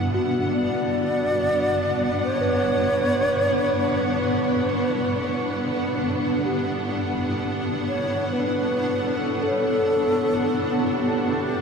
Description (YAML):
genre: ambient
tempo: free time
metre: none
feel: none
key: G lydian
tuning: A4 = 439 Hz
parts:
  - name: granular cloud pad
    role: sustained chords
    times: 0.0-11.6 s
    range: G2 to F#5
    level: -23 LUFS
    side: equal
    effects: built-in reverb
  - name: large celesta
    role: arpeggios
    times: 0.0-11.6 s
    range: E4 to C#5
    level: -30 LUFS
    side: left 1 dB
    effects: ping-pong delay
  - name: wooden-headed alto flute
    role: melody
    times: 0.5-11.6 s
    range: G4 to D5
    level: -25 LUFS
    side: equal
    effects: ping-pong delay
room: wet shimmer reverb, RT60 8.0 s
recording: dark, warm production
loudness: -20 LUFS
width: side -5 dB against mid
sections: 0.0-11.6 A section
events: none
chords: 0.0 Dadd9/G; 0.5 Gmaj9